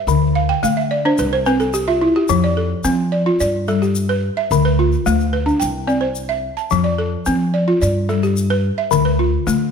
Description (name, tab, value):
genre	west african traditional, West African string and xylophone music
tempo	108 BPM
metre	4/4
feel	straight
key	F lydian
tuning	A4 = 440 Hz
part	balafon	arpeggios	0.0-9.7 s	D3 to A5	-16 LUFS	left 1 dB	none
part	upright bass	bass	0.1-9.7 s	C2 to F3	-21 LUFS	right 1 dB	none
part	egg shaker	percussion	0.1-9.6 s	none	-30 LUFS	left 6 dB	none
room	moderate recital hall reverb, RT60 1.5 s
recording	none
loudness	-15 LUFS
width	side -6 dB against mid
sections	0.0-9.7 A section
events	balafon fill 0.3-2.3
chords	0.1 D5; 1.2 C; 2.3 F; 3.4 G; 4.5 Dm; 5.6 C; 6.7 F; 7.8 G; 8.9 Dm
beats	| 0.07 0.63 1.18 1.74 | 2.29 2.84 3.40 3.95 | 4.50 5.05 5.61 6.16 | 6.71 7.26 7.82 8.37 | 8.92 9.47